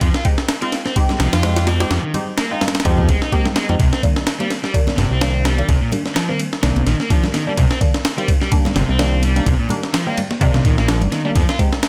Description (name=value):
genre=breakbeat, breaks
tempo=127 BPM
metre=4/4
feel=swing 56% on 16ths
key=C minor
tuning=A4 = 435 Hz
part: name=crunchy overdriven guitar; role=riff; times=0.0-11.6 s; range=Bb2 to F4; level=-25 LUFS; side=equal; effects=vintage 12-bit sampler grit, digital delay
part: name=fat analog bass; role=bass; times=0.0-11.4 s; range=G1 to F2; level=-20 LUFS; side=equal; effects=none
part: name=breakbeat sampler-style drum kit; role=drums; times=0.0-11.9 s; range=kick drum, ride cymbal, snare drum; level=-21 LUFS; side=equal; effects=none
part: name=filtered dub chord stab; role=stabs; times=0.3-11.7 s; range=Eb3 to G4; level=-26 LUFS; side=equal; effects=phaser, digital delay
part: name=congas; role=percussion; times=1.1-11.6 s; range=none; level=-31 LUFS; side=equal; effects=none
room=light reverb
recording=none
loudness=-18 LUFS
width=mono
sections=0.0-11.9 A section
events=none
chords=0.0 Fm9; 3.8 Cm9; 11.4 Fm9